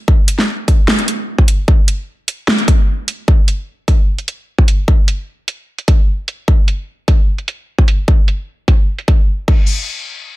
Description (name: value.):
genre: heavy wobble dubstep.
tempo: 150 BPM.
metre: 4/4.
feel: half-time.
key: none.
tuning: none.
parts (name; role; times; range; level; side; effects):
electronic kick drum; drums; 0.1-9.6 s; none; -11 LUFS; equal; overdrive.
dubstep drum kit; drums; 0.3-9.6 s; crash cymbal, hi-hat, snare drum; -18 LUFS; right 1 dB; low-pass filter on snare, low-pass filter on hats, low-pass filter on cymbals.
room: digital ambience.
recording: dense, heavily limited modern master.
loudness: -12 LUFS.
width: side -18 dB against mid.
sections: 0.0-9.7 A section.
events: filter sweep on drum 0.0-9.7.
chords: none.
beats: | 0.08 0.48 0.88 1.28 | 1.68 2.08 2.48 2.88 | 3.28 3.68 4.08 4.48 | 4.88 5.28 5.68 6.08 | 6.48 6.88 7.28 7.68 | 8.08 8.48 8.88 9.28.